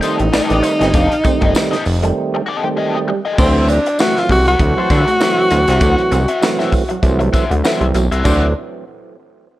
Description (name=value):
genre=funk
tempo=98 BPM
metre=4/4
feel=swing 56% on 16ths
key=D mixolydian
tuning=A4 = 440 Hz
part: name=breathy tenor saxophone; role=melody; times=0.0-8.5 s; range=C4 to F#4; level=-17 LUFS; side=equal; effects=plate reverb
part: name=mellow horn section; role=second line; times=0.0-0.7, 4.8-8.5 s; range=A3 to D5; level=-24 LUFS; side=left 2 dB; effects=plate reverb
part: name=overdriven electric guitar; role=accompaniment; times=0.0-8.5 s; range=F#4 to F#5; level=-22 LUFS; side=left 4 dB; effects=wah, plate reverb
part: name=electric guitar through a small old amp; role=riff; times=0.0-8.4 s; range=F#3 to D4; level=-25 LUFS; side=right 2 dB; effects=wide subtle chorus
part: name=percussive tonewheel organ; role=stabs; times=0.0-8.5 s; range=Eb3 to C4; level=-21 LUFS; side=right 4 dB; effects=slow rotary speaker, plate reverb, tape echo
part: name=crisp fusion drum kit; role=drums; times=0.0-8.4 s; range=crash cymbal, hi-hat, kick drum, snare drum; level=-18 LUFS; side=equal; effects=none
part: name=tambourine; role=percussion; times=0.0-8.5 s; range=none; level=-33 LUFS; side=left 4 dB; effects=none
part: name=fat analog bass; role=bass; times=0.2-8.5 s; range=F1 to D3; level=-16 LUFS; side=equal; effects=none
room=light reverb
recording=none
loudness=-12 LUFS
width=side -15 dB against mid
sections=0.0-3.4 A section; 3.4-8.3 B section; 8.3-9.6 C section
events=break 2.2-3.4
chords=0.0 F9; 3.4 D9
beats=0.33 | 0.94 1.55 2.16 2.77 | 3.38 3.99 4.60 5.21 | 5.82 6.43 7.04 7.65 | 8.26